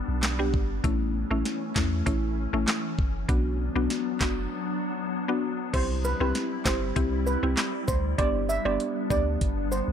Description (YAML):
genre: dancehall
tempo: 98 BPM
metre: 4/4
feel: straight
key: unclear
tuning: A4 = 440 Hz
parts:
  - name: glassy FM pad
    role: sustained chords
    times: 0.0-9.9 s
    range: E3 to E4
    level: -33 LUFS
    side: left 1 dB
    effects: ensemble chorus, built-in reverb, sidechain pumping
  - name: punchy sub bass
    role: bass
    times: 0.0-9.9 s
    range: F#1 to E2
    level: -29 LUFS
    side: equal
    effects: none
  - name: afro-pop drum kit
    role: drums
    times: 0.2-9.6 s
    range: crash cymbal, handclaps, hi-hat, kick drum, snare drum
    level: -28 LUFS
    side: equal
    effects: none
  - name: mallet-like synth pluck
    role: accompaniment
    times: 0.4-9.4 s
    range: A3 to G4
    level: -30 LUFS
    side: left 2 dB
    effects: chorus
  - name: steel pan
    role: melody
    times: 5.7-9.8 s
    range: B4 to E5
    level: -30 LUFS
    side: right 4 dB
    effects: digital delay
  - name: woodblock and cabasa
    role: percussion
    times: 5.7-9.9 s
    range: none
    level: -41 LUFS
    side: right 4 dB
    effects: none
room: little or no reverb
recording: none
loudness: -24 LUFS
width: side -8 dB against mid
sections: 0.0-5.7 A section; 5.7-9.9 B section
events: break 4.5-5.7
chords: 0.0 G; 0.8 A; 3.3 Bm; 5.7 C; 8.2 G